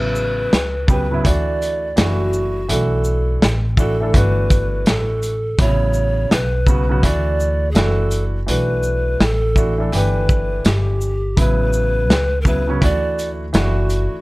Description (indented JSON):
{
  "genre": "hip hop, jazz-hop",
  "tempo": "83 BPM",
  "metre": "4/4",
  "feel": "swing 63% on 16ths",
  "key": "unclear",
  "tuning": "A4 = 440 Hz",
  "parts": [
    { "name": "breathy mellow large pan pipes", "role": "melody", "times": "0.0-14.2 s", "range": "F#4 to D5", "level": "-22 LUFS", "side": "equal", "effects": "none" },
    { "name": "warm grand piano", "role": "accompaniment", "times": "0.0-14.2 s", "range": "C3 to A4", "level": "-23 LUFS", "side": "right 2 dB", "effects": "none" },
    { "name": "upright bass", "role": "bass", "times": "0.0-14.2 s", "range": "F#1 to D2", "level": "-20 LUFS", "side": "equal", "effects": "none" },
    { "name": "crunchy breakbeat drum kit", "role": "drums", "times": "0.2-14.1 s", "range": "hi-hat, kick drum, shaker, snare drum", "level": "-17 LUFS", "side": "equal", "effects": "none" }
  ],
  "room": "little or no reverb",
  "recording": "none",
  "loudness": "-15 LUFS",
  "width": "side -21 dB against mid",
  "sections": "0.0-14.2 A section",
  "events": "none",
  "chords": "0.0 Aadd9; 1.3 Dadd9; 2.0 Dadd9/F#; 2.7 Bm7; 4.1 G69; 5.6 Aadd9; 7.0 Dadd9; 7.8 Dadd9/F#; 8.5 Bm7; 9.9 G69; 11.4 Aadd9; 12.8 Dadd9; 13.5 Dadd9/F#"
}